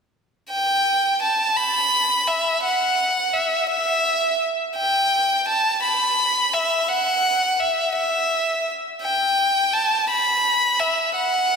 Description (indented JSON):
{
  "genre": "rock",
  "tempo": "56 BPM (dotted quarters)",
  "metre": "6/8",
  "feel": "straight",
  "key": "E minor",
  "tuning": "A4 = 440 Hz",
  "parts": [
    { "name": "clear violin", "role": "melody", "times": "0.5-11.6 s", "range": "E5 to B5", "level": "-18 LUFS", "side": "equal", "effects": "slapback echo, analog delay" }
  ],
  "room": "wet lush hall reverb, RT60 2.1 s",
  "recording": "big arena sound",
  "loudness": "-18 LUFS",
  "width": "side -5 dB against mid",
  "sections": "0.5-11.6 A section",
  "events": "none",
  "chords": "none",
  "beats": "| 0.51 1.58 | 2.64 3.70 | 4.76 5.83 | 6.89 7.95 | 9.02 10.08 | 11.14"
}